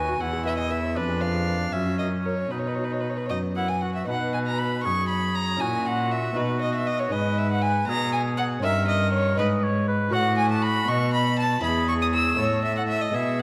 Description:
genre	classical, baroque-style sonata movement with continuo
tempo	79 BPM (dotted quarters)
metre	6/8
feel	straight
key	B major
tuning	A4 = 438 Hz
part	warm oboe	melody	0.0-13.4 s	C#4 to D#5	-33 LUFS	equal	none
part	rich violin	second line	0.0-13.4 s	B4 to E6	-29 LUFS	equal	none
part	lute	accompaniment	0.0-13.4 s	D#2 to E5	-35 LUFS	equal	none
part	rich cello	bass	0.0-13.4 s	D#2 to B2	-28 LUFS	equal	none
room	wet concert hall reverb, RT60 1.9 s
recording	none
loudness	-25 LUFS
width	mono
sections	0.0-4.1 A section; 4.1-13.4 B section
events	none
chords	0.2 C#m7/E; 1.0 Fdim7; 1.7 F#; 2.5 B; 5.6 F#7/A#; 6.4 B; 7.1 G#m; 8.6 D#7/G; 9.4 G#m; 10.1 F#m/A; 10.9 B; 11.6 E; 12.4 A

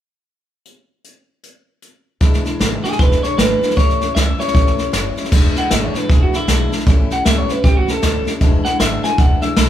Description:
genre	rockabilly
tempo	155 BPM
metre	4/4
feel	swing 61% on 8ths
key	E mixolydian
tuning	A4 = 445 Hz
part	jazz brush drum kit	drums	0.7-9.7 s	crash cymbal, hi-hat, kick drum, snare drum	-15 LUFS	equal	none
part	picked steel-string acoustic guitar	accompaniment	2.2-9.7 s	E2 to E4	-23 LUFS	left 3 dB	none
part	upright bass	bass	2.2-9.7 s	E1 to D2	-22 LUFS	equal	none
part	electric guitar through a small old amp	melody	2.8-9.7 s	E4 to G#5	-20 LUFS	equal	none
room	light reverb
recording	band playing live in one room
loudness	-13 LUFS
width	side -11 dB against mid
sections	0.7-2.2 A section; 2.2-5.3 B section; 5.3-9.7 C section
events	none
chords	0.7 N.C.; 2.2 E7; 3.8 A7; 5.3 E7; 6.9 A7; 8.4 E7

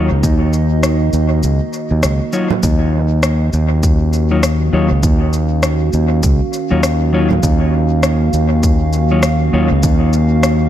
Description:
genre	ambient dub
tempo	100 BPM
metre	4/4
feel	swing 59% on 16ths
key	Eb minor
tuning	A4 = 440 Hz
part	warbly tape-like pad	sustained chords	0.0-10.7 s	Eb3 to F5	-20 LUFS	right 1 dB	chorus, built-in reverb
part	mellow electric guitar	stabs	0.0-9.7 s	Gb3 to Db5	-22 LUFS	left 3 dB	vintage 12-bit sampler grit, dub echo
part	overdriven fingered electric bass	bass	0.0-10.7 s	Db2 to Eb2	-14 LUFS	equal	none
part	electronic kick drum	drums	0.2-10.0 s	none	-16 LUFS	equal	overdrive
part	electronic shaker, rim click and congas	drums	0.2-10.6 s	none	-21 LUFS	equal	overdrive, dub echo
room	light reverb, digital ambience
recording	echo-heavy mix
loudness	-12 LUFS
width	side -11 dB against mid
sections	0.0-2.6 A section; 2.6-10.7 B section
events	break 1.4-2.6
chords	0.0 Ebm7; 2.6 Ebm9

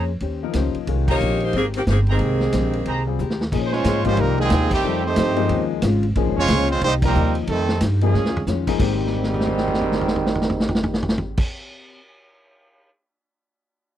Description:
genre	jazz, big band swing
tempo	182 BPM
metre	4/4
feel	swing 62% on 8ths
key	Ab major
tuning	A4 = 439 Hz
part	picked steel-string acoustic guitar	accompaniment	0.0-12.0 s	C3 to C5	-30 LUFS	left 7 dB	none
part	clear trumpet section	stabs	0.0-3.0 s	Ab4 to Bb5	-27 LUFS	right 3 dB	none
part	upright bass	bass	0.0-11.4 s	F1 to Bb2	-22 LUFS	right 1 dB	none
part	vintage drum kit	drums	0.2-12.9 s	crash cymbal, hi-hat, kick drum, ride cymbal, snare drum, toms	-24 LUFS	equal	none
part	clear concert grand piano	accompaniment	0.4-11.4 s	Ab2 to Bb4	-27 LUFS	left 16 dB	none
part	bright saxophone section	melody	1.1-3.2 s	Eb3 to Db5	-23 LUFS	left 2 dB	none
part	bright trombone section	second line	2.1-11.4 s	Ab2 to Db4	-25 LUFS	right 4 dB	none
part	clear trumpet section	melody	3.7-8.5 s	G3 to Db5	-23 LUFS	right 3 dB	none
room	little or no reverb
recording	dry, close 1970s-style studio recording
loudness	-18 LUFS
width	side -11 dB against mid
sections	0.0-3.5 A section; 3.5-8.8 B section; 8.8-11.4 C section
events	band accent 1.0, 4.7, 7.0; drum fill 3.2-3.5, 8.1-8.5, 9.0-11.4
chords	0.2 Eb13; 0.9 Abmaj9; 3.5 Bbm9; 4.2 Cm7; 4.8 F9; 5.5 Eb9sus4; 6.2 Bbm9; 6.8 Cm7; 7.5 F9; 8.1 Eb9sus4; 8.8 Abmaj9

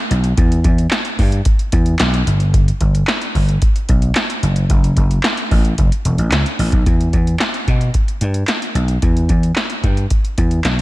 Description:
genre	early-eighties boogie funk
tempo	111 BPM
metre	4/4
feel	straight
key	E dorian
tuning	A4 = 440 Hz
part	vintage slap bass	bass	0.1-10.8 s	E1 to B2	-15 LUFS	equal	none
part	electro analog drum machine	drums	0.1-10.8 s	handclaps, hi-hat, kick drum, snare drum	-16 LUFS	equal	none
room	little or no reverb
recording	none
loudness	-13 LUFS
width	side -18 dB against mid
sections	0.0-6.9 A section; 6.9-10.8 B section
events	none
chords	none

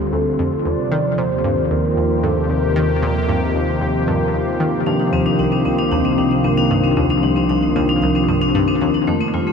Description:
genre	ambient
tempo	114 BPM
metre	4/4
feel	straight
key	C dorian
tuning	A4 = 440 Hz
part	soft octave-layered synth lead	melody	0.0-4.1 s	G4 to D5	-25 LUFS	left 1 dB	chorus, phaser, ping-pong delay
part	sweeping resonant pad	sustained chords	0.0-9.5 s	C3 to A4	-19 LUFS	right 1 dB	chorus
part	fat analog bass	bass	0.0-9.5 s	C2 to F2	-24 LUFS	equal	none
part	wind-like tuned noise texture	texture	0.0-9.5 s	C4 to C5	-30 LUFS	right 1 dB	built-in reverb
part	analog pluck	riff	0.1-9.5 s	C2 to Eb3	-24 LUFS	equal	chorus, ping-pong delay
part	vibraphone with hard mallets	arpeggios	4.9-9.5 s	A3 to F4	-19 LUFS	moving between left 9 dB and left 1 dB	auto-pan, ping-pong delay
room	wet huge ambient reverb, RT60 8.8 s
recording	dreamy mix soaked in reverb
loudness	-15 LUFS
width	side -6 dB against mid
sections	0.0-9.5 A section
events	none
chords	0.0 Dm7; 0.7 Ebsus2; 4.9 Cmadd9

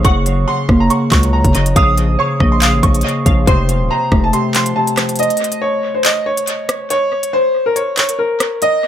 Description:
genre	hip hop, drill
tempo	140 BPM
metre	4/4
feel	half-time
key	unclear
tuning	A4 = 439 Hz
part	clear concert grand piano	melody	0.0-8.9 s	Bb4 to Eb6	-16 LUFS	right 1 dB	tape echo
part	glassy wavetable pluck	second line	0.0-4.7 s	C5 to Gb5	-24 LUFS	left 5 dB	chorus, tape echo
part	Celtic harp	accompaniment	0.0-7.4 s	C3 to Bb3	-18 LUFS	left 1 dB	none
part	distorted 808-style bass	bass	0.0-4.3 s	Eb1 to Db2	-15 LUFS	equal	distortion
part	drill drum kit	drums	0.0-8.7 s	handclaps, hi-hat, kick drum, rim click	-16 LUFS	equal	tape echo
room	light reverb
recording	echo-heavy mix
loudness	-12 LUFS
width	side -10 dB against mid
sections	0.0-5.2 A section; 5.2-8.9 B section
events	kick muted 4.3-5.2; break 5.2-8.9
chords	0.0 Gb; 1.8 Bbm; 3.5 F; 5.2 N.C.

